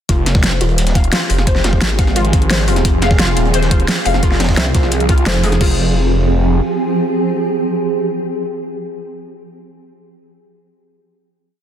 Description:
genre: dark technical drum and bass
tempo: 174 BPM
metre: 4/4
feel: straight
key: F minor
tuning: A4 = 439 Hz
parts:
  - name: swarming drone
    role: sustained chords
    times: 0.9-8.6 s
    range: F3 to Ab4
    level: -19 LUFS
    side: right 2 dB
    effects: built-in reverb, sidechain pumping
  - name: warbly dusty pluck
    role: arpeggios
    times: 0.1-5.8 s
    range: F4 to F5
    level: -22 LUFS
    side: left 3 dB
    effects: ensemble chorus, sidechain pumping, dub echo
  - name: phased detuned saw bass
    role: bass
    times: 0.1-6.6 s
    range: Eb1 to C2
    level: -16 LUFS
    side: equal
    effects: phaser, overdrive, sidechain pumping
  - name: crunchy breakbeat drum kit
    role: drums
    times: 0.1-5.5 s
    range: hi-hat, snare drum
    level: -28 LUFS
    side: equal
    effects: none
  - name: dubstep drum kit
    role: drums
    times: 0.1-5.7 s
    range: crash cymbal, hi-hat, snare drum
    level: -19 LUFS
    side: equal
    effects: overdrive
  - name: electronic kick drum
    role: drums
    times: 0.1-5.7 s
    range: none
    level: -14 LUFS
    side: equal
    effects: overdrive
  - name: metallic wobble bass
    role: bass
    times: 4.6-5.6 s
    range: F1 to C2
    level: -16 LUFS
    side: equal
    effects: chorus, tube saturation
room: light reverb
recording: dense, heavily limited modern master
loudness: -12 LUFS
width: side -10 dB against mid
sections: 0.1-5.6 drop; 5.6-8.4 final chord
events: drop 0.1-5.6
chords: 0.1 Fmadd9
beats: | 0.09 0.43 0.78 1.12 | 1.47 1.81 2.16 2.50 | 2.85 3.19 3.54 3.88 | 4.23 4.57 4.92 5.26 | 5.61 5.95 6.30 6.64 | 6.99 7.33 7.68 8.02

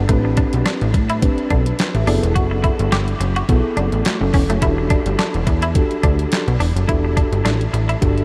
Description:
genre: early-eighties boogie funk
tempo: 106 BPM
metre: 4/4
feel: swing 56% on 16ths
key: E minor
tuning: A4 = 440 Hz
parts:
  - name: clean electric guitar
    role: riff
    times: 0.0-8.0 s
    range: A3 to G4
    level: -27 LUFS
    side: equal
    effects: lush chorus
  - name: plucky analog bass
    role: bass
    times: 0.0-8.2 s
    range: E1 to A2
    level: -21 LUFS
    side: equal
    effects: none
  - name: mellow tine electric piano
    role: accompaniment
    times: 0.1-8.2 s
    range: A3 to E5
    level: -25 LUFS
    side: equal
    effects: none
  - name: crisp 8-bit digital drum machine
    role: drums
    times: 0.1-8.2 s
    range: handclaps, hi-hat, kick drum, snare drum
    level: -22 LUFS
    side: equal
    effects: none
room: moderate huge ambient reverb, RT60 7.8 s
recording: dreamy mix soaked in reverb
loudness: -18 LUFS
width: mono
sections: 0.0-8.2 A section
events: none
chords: 0.1 Am11; 2.1 F#m11; 4.6 Em11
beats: | 0.09 0.66 1.22 1.79 | 2.36 2.92 3.49 4.05 | 4.62 5.19 5.75 6.32 | 6.88 7.45 8.02

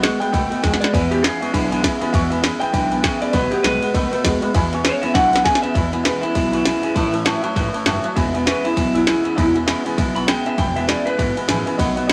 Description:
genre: rockabilly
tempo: 199 BPM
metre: 4/4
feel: swing 59% on 8ths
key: E major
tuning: A4 = 443 Hz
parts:
  - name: picked steel-string acoustic guitar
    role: accompaniment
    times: 0.0-12.1 s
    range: E2 to F#4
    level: -28 LUFS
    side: equal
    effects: none
  - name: warm upright piano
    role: accompaniment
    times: 0.0-12.1 s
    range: D#5 to E6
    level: -30 LUFS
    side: equal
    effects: none
  - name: electric guitar through a small old amp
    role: riff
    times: 0.0-12.1 s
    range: E2 to A3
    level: -26 LUFS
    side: equal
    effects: none
  - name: upright bass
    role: bass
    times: 0.0-12.1 s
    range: E1 to E2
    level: -29 LUFS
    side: equal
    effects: none
  - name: glitchy drum kit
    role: drums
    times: 0.0-12.1 s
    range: kick drum, ride cymbal, snare drum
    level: -24 LUFS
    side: equal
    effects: none
  - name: electric guitar through a small old amp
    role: melody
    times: 0.2-11.4 s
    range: E4 to B5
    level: -23 LUFS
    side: equal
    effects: none
room: moderate studio reverb, RT60 0.7 s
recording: none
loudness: -19 LUFS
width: mono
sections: 0.0-5.8 A section; 5.8-12.1 B section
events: drum fill 0.6-0.9, 5.1-5.8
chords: 0.0 B7; 0.9 E; 3.3 B7; 4.5 E; 7.0 A; 8.2 E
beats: 0.03 0.33 0.63 | 0.93 1.23 1.53 1.84 | 2.14 2.44 2.74 3.04 | 3.34 3.64 3.94 4.25 | 4.55 4.85 5.15 5.45 | 5.75 6.05 6.36 6.66 | 6.96 7.26 7.56 7.87 | 8.17 8.47 8.77 9.07 | 9.38 9.68 9.98 10.28 | 10.58 10.88 11.19 11.49 | 11.79 12.09

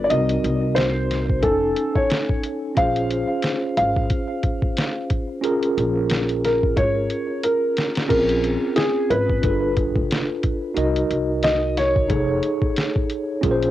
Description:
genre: hip hop, jazz-hop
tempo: 90 BPM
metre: 4/4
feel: swing 58% on 16ths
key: unclear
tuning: A4 = 438 Hz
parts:
  - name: felt-muted upright piano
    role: melody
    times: 0.0-13.1 s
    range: Ab4 to F5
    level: -22 LUFS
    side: equal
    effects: cassette tape, tape echo
  - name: tine electric piano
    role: accompaniment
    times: 0.0-13.7 s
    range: C4 to G#5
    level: -23 LUFS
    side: equal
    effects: medium stereo tremolo, cassette tape
  - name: upright bass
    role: bass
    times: 0.0-13.7 s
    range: F1 to C2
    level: -26 LUFS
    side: equal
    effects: none
  - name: lo-fi sampler-style drum kit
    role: drums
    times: 0.1-13.7 s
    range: crash cymbal, hi-hat, kick drum, snare drum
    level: -24 LUFS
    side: equal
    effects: cassette tape
room: light reverb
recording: home recording on cassette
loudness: -19 LUFS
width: side -13 dB against mid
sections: 0.0-8.1 A section; 8.1-13.7 A section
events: drum fill 6.8-8.1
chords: 0.1 Cm7b5; 1.4 F7alt; 2.8 Bbm9; 9.4 G7; 10.8 Cm7b5; 12.1 F7alt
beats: | 0.10 0.77 1.43 2.10 | 2.77 3.43 4.10 4.77 | 5.43 6.10 6.77 7.43 | 8.10 8.77 9.43 10.10 | 10.77 11.43 12.10 12.77 | 13.43

